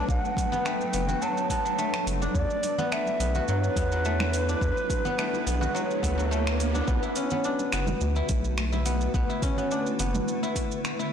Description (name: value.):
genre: organic downtempo.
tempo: 106 BPM.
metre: 4/4.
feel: straight.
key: B minor.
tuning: A4 = 440 Hz.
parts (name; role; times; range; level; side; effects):
breathy bansuri; melody; 0.0-6.3 s; B4 to A5; -31 LUFS; right 1 dB; digital delay.
granular cloud pad; sustained chords; 0.0-11.1 s; D3 to B4; -33 LUFS; left 1 dB; built-in reverb, sidechain pumping.
guzheng; arpeggios; 0.0-11.1 s; F#3 to F#4; -30 LUFS; left 2 dB; tape echo.
round analog bass; bass; 0.0-10.2 s; F#1 to G2; -28 LUFS; equal; tube saturation, sidechain pumping.
afro-pop drum kit; drums; 0.1-11.1 s; finger snaps, hi-hat, shaker; -35 LUFS; right 2 dB; studio reverb, soft clipping on snare.
electronic kick drum; drums; 0.1-10.7 s; none; -29 LUFS; equal; studio reverb.
congas; percussion; 0.5-10.3 s; none; -37 LUFS; right 4 dB; none.
riser; sound effects; 4.4-6.9 s; none; -36 LUFS; right 4 dB; none.
room: light reverb.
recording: blown-out, overdriven recording, overdrive.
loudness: -24 LUFS.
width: side -8 dB against mid.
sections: 0.0-6.9 A section; 6.9-11.1 B section.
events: riser 4.4-6.9.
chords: 0.0 Bm7; 2.4 E7(no3); 6.9 Bm7.